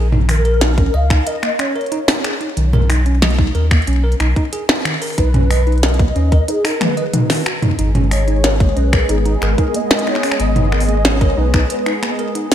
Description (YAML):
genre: IDM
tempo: 92 BPM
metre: 4/4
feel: straight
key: unclear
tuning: A4 = 440 Hz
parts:
  - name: bell-like tine electric piano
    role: arpeggios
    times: 0.0-12.5 s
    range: Eb3 to Eb5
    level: -23 LUFS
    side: right 2 dB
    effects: ping-pong delay
  - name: warm sub bass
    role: bass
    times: 0.0-11.6 s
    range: Ab1 to D#2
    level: -15 LUFS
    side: equal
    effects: none
  - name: glitchy drum kit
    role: drums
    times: 0.1-12.5 s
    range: finger snaps, hi-hat, snare drum, toms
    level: -18 LUFS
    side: equal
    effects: none
  - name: warbly nostalgic lead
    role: melody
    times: 0.3-12.5 s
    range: Ab4 to F5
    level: -22 LUFS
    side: equal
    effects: ensemble chorus, vintage 12-bit sampler grit, ping-pong delay
  - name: electronic kick drum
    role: drums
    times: 0.8-11.7 s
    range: none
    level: -16 LUFS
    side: equal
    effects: none
  - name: warm analog pad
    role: sustained chords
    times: 7.8-12.5 s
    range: Ab3 to Eb5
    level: -23 LUFS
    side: left 1 dB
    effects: chorus
room: light reverb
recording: bright 1980s-style digital production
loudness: -13 LUFS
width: side -10 dB against mid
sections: 0.0-12.5 A section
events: drum fill 6.8-7.8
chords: 0.0 Bbm; 2.6 B; 7.8 Abmadd9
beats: 0.61 1.27 1.92 | 2.57 3.22 3.88 4.53 | 5.18 5.83 6.48 7.14 | 7.79 8.44 9.09 9.74 | 10.40 11.05 11.70 12.35